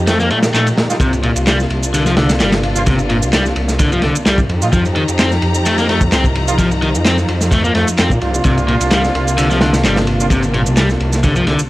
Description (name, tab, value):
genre	breakbeat, breaks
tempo	129 BPM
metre	4/4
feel	swing 53% on 16ths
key	C minor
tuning	A4 = 441 Hz
part	warm symphonic string section	sustained chords	0.0-11.7 s	C3 to Bb5	-20 LUFS	equal	vintage 12-bit sampler grit, sidechain pumping
part	detuned saw bass	bass	0.0-11.7 s	G1 to Bb2	-18 LUFS	equal	none
part	crunchy overdriven guitar	riff	0.1-11.6 s	Bb2 to C4	-18 LUFS	left 1 dB	tape echo
part	crunchy breakbeat drum kit	drums	0.1-11.6 s	kick drum, ride cymbal, snare drum	-18 LUFS	equal	none
part	electronic shaker and handclaps	drums	0.1-11.7 s	none	-22 LUFS	right 1 dB	none
part	mellow horn section	stabs	0.9-10.3 s	G3 to F4	-21 LUFS	right 2 dB	tape echo
room	little or no reverb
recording	dry, gritty hardware recording, cassette tape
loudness	-12 LUFS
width	side -17 dB against mid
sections	0.0-11.7 A section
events	none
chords	0.0 F9sus4; 1.0 C9sus4; 4.5 F9sus4; 8.4 C9sus4